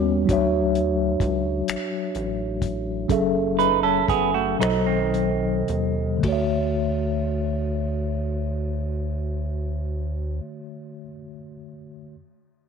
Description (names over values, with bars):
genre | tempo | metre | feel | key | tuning
slow six-eight R&B | 35-44 BPM (dotted quarters) | 6/8 | straight | D major | A4 = 444 Hz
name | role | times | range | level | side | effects
mellow tine electric piano | accompaniment | 0.0-12.2 s | B2 to E5 | -24 LUFS | left 2 dB | medium stereo tremolo
rubbery square bass | bass | 0.0-10.4 s | F#1 to Eb2 | -28 LUFS | equal | none
cloth-damped thuddy drum kit | drums | 0.3-6.5 s | finger snaps, hi-hat, kick drum, ride cymbal | -28 LUFS | left 2 dB | none
semi-hollow electric guitar | second line | 3.6-6.2 s | D#3 to B4 | -23 LUFS | right 12 dB | none
room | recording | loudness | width
moderate echo chamber reverb, RT60 2.1 s | 1960s-style stereo | -21 LUFS | side -6 dB against mid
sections
0.3-6.2 A section; 6.2-9.6 B section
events
slowing down 0.3-6.2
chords
0.3 Dmaj7; 3.1 F#m9; 4.6 B7b9; 6.2 Dmaj7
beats
| 0.28 1.66 | 3.09 4.60 | 6.23 7.93